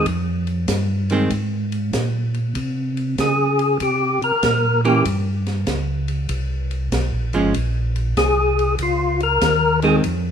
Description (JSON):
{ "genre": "soul jazz organ trio", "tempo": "96 BPM", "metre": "4/4", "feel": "swing 67% on 8ths", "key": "unclear", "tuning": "A4 = 440 Hz", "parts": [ { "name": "percussive tonewheel organ", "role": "melody", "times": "0.0-10.0 s", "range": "F4 to Bb4", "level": "-18 LUFS", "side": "left 2 dB", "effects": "slow rotary speaker, overdrive, chorus vibrato" }, { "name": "archtop guitar, miked and amplified", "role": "accompaniment", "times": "0.0-10.0 s", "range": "Eb3 to Db4", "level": "-20 LUFS", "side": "right 2 dB", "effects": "none" }, { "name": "mellow tonewheel organ", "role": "bass", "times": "0.0-10.3 s", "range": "G1 to Db3", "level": "-21 LUFS", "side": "equal", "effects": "chorus vibrato, slow rotary speaker" }, { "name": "open jazz drum kit", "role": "drums", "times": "0.1-10.2 s", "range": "hi-hat, kick drum, ride cymbal, snare drum", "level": "-28 LUFS", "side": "equal", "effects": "none" } ], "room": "light reverb", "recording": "minimal, uncompressed stereo recording", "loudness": "-17 LUFS", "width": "side -8 dB against mid", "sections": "0.0-10.3 A section", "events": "tonewheel organ solo 0.0-10.3", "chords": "0.0 Fm; 2.6 C7(no3); 7.5 Bbm7" }